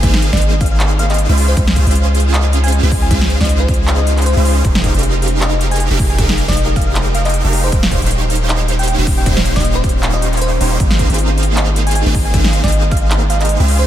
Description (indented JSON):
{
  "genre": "future bass",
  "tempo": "156 BPM",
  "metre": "4/4",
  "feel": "swing 55% on 16ths, half-time",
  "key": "unclear",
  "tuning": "A4 = 435 Hz",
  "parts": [
    { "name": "bell-like FM electric piano", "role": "melody", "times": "0.0-13.8 s", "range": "C5 to Ab5", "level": "-23 LUFS", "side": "equal", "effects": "chorus, phaser, sidechain pumping, diffuse ambient delay" },
    { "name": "shimmering ambient pad", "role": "sustained chords", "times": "0.0-13.9 s", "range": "Db3 to G5", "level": "-26 LUFS", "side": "left 1 dB", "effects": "chorus, built-in reverb, sidechain pumping" },
    { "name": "supersaw chords", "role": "riff", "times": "0.0-13.9 s", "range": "Bb3 to F5", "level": "-20 LUFS", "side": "right 1 dB", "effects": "phaser, sidechain pumping, diffuse ambient delay" },
    { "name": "long sustained 808-style bass", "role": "bass", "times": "0.0-13.9 s", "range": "Eb1 to Db2", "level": "-14 LUFS", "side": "equal", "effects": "sidechain pumping" },
    { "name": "big-room dance drum kit", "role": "drums", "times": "0.0-13.8 s", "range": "handclaps, hi-hat, snare drum", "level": "-21 LUFS", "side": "equal", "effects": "overdrive" },
    { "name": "electronic kick drum", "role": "drums", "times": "0.0-13.0 s", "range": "none", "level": "-17 LUFS", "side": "equal", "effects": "overdrive" }
  ],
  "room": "light reverb",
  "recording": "none",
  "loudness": "-11 LUFS",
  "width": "side -12 dB against mid",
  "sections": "0.0-13.9 A section",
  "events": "none",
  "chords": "0.0 Ab69; 1.4 Dbmaj7; 4.6 Fm11; 7.7 Eb13; 10.8 Ab69"
}